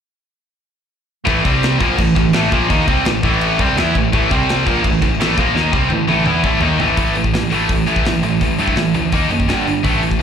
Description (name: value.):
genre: heavy metal.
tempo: 168 BPM.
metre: 4/4.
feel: straight.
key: A minor.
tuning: A4 = 440 Hz.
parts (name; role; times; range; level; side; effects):
overdriven electric guitar; riff; 1.2-7.0 s; A2 to E4; -24 LUFS; equal; slapback echo.
heavy high-gain guitar; riff; 1.3-10.2 s; G2 to E4; -18 LUFS; left 11 dB; distortion, slapback echo.
tight distorted guitar; riff; 1.3-10.2 s; G2 to E4; -19 LUFS; right 11 dB; distortion, slapback echo.
growling picked electric bass; bass; 1.3-10.2 s; G1 to G2; -21 LUFS; equal; overdrive.
modern studio drum kit; drums; 1.3-10.2 s; crash cymbal, hi-hat, kick drum, snare drum, toms; -20 LUFS; equal; none.
room: small room reverb.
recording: live gig heard through the venue's PA, club reverb.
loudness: -13 LUFS.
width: side -8 dB against mid.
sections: 1.3-7.0 A section; 7.0-10.2 B section.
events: drum fill 5.6-7.0.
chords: 1.3 A5; 1.4 C5; 1.8 Am; 4.3 C5; 4.7 Am; 7.0 A5; 9.1 D#5; 9.5 G5.